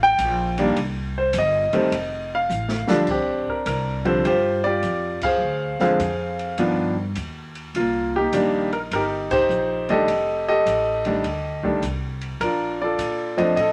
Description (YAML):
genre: jazz piano trio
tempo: 103 BPM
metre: 4/4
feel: swing 67% on 8ths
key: Bb major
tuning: A4 = 442 Hz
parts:
  - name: clear concert grand piano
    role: melody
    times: 0.0-13.7 s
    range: D3 to G5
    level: -22 LUFS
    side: equal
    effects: none
  - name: upright bass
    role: bass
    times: 0.0-13.7 s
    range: F1 to Bb2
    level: -33 LUFS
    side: equal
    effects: none
  - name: open jazz drum kit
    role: drums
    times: 0.2-13.7 s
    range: crash cymbal, hi-hat, kick drum, ride cymbal, snare drum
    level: -37 LUFS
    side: equal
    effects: none
room: wet small room reverb, RT60 0.6 s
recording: none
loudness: -22 LUFS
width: mono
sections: 0.0-3.1 A section; 3.1-13.7 B section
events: grand piano solo 0.0-3.1; drum fill 2.5-3.1; band accent 5.1, 9.2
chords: 0.0 Bb6; 0.8 Cm; 1.9 F; 3.1 Bb69; 5.4 Dm7b5; 6.6 G7b13; 7.7 Cm7; 10.1 F13; 12.4 Bbmaj7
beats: 0.19 | 0.77 1.35 1.93 2.51 | 3.09 3.67 4.26 4.84 | 5.42 6.00 6.58 7.17 | 7.75 8.33 8.91 9.49 | 10.07 10.66 11.24 11.82 | 12.40 12.99 13.57